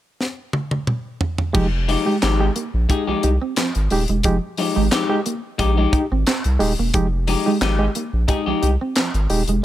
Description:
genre	funk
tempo	89 BPM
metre	4/4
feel	straight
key	F minor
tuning	A4 = 439 Hz
part	tight funk drum kit	drums	0.2-9.6 s	crash cymbal, handclaps, hi-hat, kick drum, snare drum, toms	-22 LUFS	equal	none
part	clean electric guitar	riff	1.5-9.6 s	F3 to C4	-25 LUFS	right 4 dB	wide subtle chorus
part	barky reed electric piano	stabs	1.5-9.5 s	F3 to G4	-24 LUFS	right 2 dB	overdrive, fast tremolo
part	round analog bass	bass	1.6-9.6 s	Eb1 to C2	-20 LUFS	equal	none
part	electric guitar at the edge of break-up	accompaniment	1.9-8.7 s	Ab3 to Ab4	-23 LUFS	left 7 dB	none
room	small room reverb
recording	none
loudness	-18 LUFS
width	side -13 dB against mid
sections	0.0-1.6 A section; 1.6-9.6 B section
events	drum fill 0.2-1.6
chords	0.0 N.C.; 1.6 Fm9

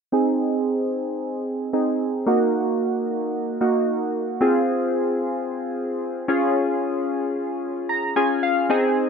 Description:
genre	pop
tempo	112 BPM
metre	4/4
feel	straight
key	unclear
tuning	A4 = 438 Hz
part	chorused retro synth keys	accompaniment	0.1-9.1 s	Bb3 to Bb5	-20 LUFS	equal	low-pass filter
room	light reverb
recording	none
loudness	-20 LUFS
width	side -6 dB against mid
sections	0.1-9.1 A section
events	filter sweep on synth keys 0.1-9.1; synth keys fill 7.6-8.7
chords	0.1 Ab; 2.3 Ebm; 4.4 Fm; 6.3 Db

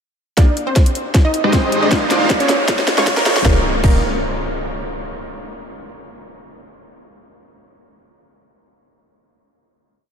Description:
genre	future bass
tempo	156 BPM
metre	4/4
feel	swing 53% on 16ths, half-time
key	Eb major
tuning	A4 = 444 Hz
part	wide unison pluck	melody	0.4-4.0 s	Bb3 to Eb5	-22 LUFS	equal	sidechain pumping, tape echo
part	dense compressed supersaw	riff	0.4-4.0 s	Ab3 to F5	-20 LUFS	equal	sidechain pumping, low-pass filter, tape echo
part	long sustained 808-style bass	bass	0.4-4.0 s	Eb1 to Db2	-26 LUFS	equal	none
part	electronic kick drum	drums	0.4-3.9 s	none	-14 LUFS	equal	overdrive
part	trap drum kit	drums	0.4-3.9 s	crash cymbal, hi-hat, snare drum	-21 LUFS	equal	overdrive
part	riser and impact	sound effects	0.9-5.0 s	none	-26 LUFS	equal	none
room	wet cathedral reverb, RT60 6.1 s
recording	dreamy mix soaked in reverb, high-pass filter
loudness	-14 LUFS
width	side -7 dB against mid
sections	0.4-3.5 build; 3.5-5.0 final chord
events	build-up 0.4-3.5; drum fill 0.4-3.5; filter sweep on supersaw synth 0.4-3.5; filter sweep 0.4-3.5; riser 0.9-3.5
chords	0.4 Ebmaj9; 1.1 Abmaj7; 1.9 Cm11; 2.5 Dbmaj9; 3.5 Ebmaj9

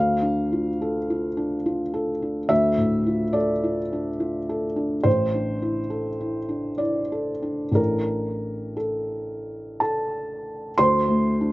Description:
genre	neoclassical minimalist piano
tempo	56-71 BPM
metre	3/4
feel	rubato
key	D minor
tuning	A4 = 440 Hz
part	felt-muted upright piano	solo	0.0-11.5 s	A1 to C6	-22 LUFS	equal	none
room	light reverb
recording	recorded outdoors, with no room sound, nothing above 7.6 kHz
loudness	-22 LUFS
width	side -19 dB against mid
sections	0.0-10.8 A section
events	none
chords	0.0 Dm; 5.1 Asus4; 10.8 D5

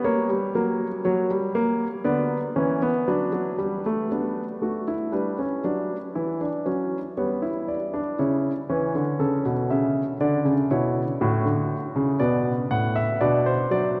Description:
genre	classical, baroque-style 3-part fugue for grand piano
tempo	59 BPM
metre	4/4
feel	straight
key	unclear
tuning	A4 = 440 Hz
part	warm grand piano	solo	0.0-14.0 s	A2 to F#5	-24 LUFS	equal	none
room	wet cathedral reverb, RT60 5.1 s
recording	in a vast, echoing space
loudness	-25 LUFS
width	mono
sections	0.0-4.1 A section; 4.1-14.0 B section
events	none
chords	0.0 F#; 2.1 Bm/D; 4.1 Bm; 6.1 Em; 8.2 A/C#; 10.2 D; 12.2 Bm

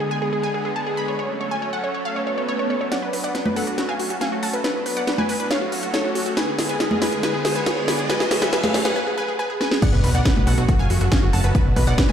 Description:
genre	uplifting trance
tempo	139 BPM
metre	4/4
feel	straight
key	F# minor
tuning	A4 = 439 Hz
part	wide unison pluck	melody	0.0-12.1 s	F#4 to B5	-24 LUFS	equal	sidechain pumping, digital delay
part	supersaw pad	sustained chords	0.0-12.1 s	C#3 to B4	-28 LUFS	equal	sidechain pumping
part	swell, riser and sub drop	sound effects	2.2-11.5 s	none	-29 LUFS	right 1 dB	none
part	techno drum kit	drums	2.9-12.1 s	congas, crash cymbal, hi-hat, snare drum	-24 LUFS	equal	overdrive
part	supersaw stab	second line	9.8-12.1 s	F#4 to A5	-31 LUFS	right 2 dB	sidechain pumping, tape echo
part	electronic kick drum	drums	9.8-12.1 s	none	-19 LUFS	equal	overdrive
part	plucky analog bass	bass	9.9-12.1 s	F#1 to B1	-20 LUFS	equal	sidechain pumping
room	moderate lush hall reverb, RT60 2.0 s, digital ambience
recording	played on a big sound system in a bare room, large studio reverb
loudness	-19 LUFS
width	side -9 dB against mid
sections	0.0-2.9 A section; 2.9-9.8 B section; 9.8-12.1 C section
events	swell 2.2-2.9; build-up 2.9-9.8; drum fill 2.9-9.0, 9.6; riser 2.9-9.0; break 9.0-9.8; drop 9.8-12.1; impact 9.8-11.5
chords	0.0 G#dim; 1.2 F#m; 2.9 Bm; 3.8 F#m; 4.6 Bm; 5.5 F#m; 6.4 G#dim; 8.1 F#m; 9.8 Bm; 10.7 F#m; 11.5 Bm

